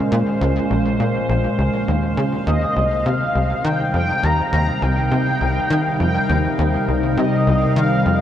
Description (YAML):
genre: ambient, sequencer-driven space music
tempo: 102 BPM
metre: 4/4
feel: straight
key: unclear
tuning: A4 = 439 Hz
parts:
  - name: evolving wavetable pad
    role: sustained chords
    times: 0.0-8.2 s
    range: Bb2 to C5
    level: -21 LUFS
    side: equal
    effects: chorus, built-in reverb
  - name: bubbling stepped-filter texture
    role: texture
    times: 0.0-8.2 s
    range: F5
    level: -34 LUFS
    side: right 3 dB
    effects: chorus, built-in reverb
  - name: tight sequencer bass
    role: riff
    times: 0.1-8.2 s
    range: Bb1 to Eb3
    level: -20 LUFS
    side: left 1 dB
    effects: lush chorus, tape echo
  - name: expressive portamento lead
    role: melody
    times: 2.5-8.2 s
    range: Eb5 to Bb5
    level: -21 LUFS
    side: equal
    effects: ensemble chorus, tape echo
room: wet huge ambient reverb, RT60 7.9 s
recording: dark, warm production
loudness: -16 LUFS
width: side -10 dB against mid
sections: 0.0-8.2 A section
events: fade-in on synth texture 0.0-8.2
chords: 0.0 Bbm7; 2.5 Cm7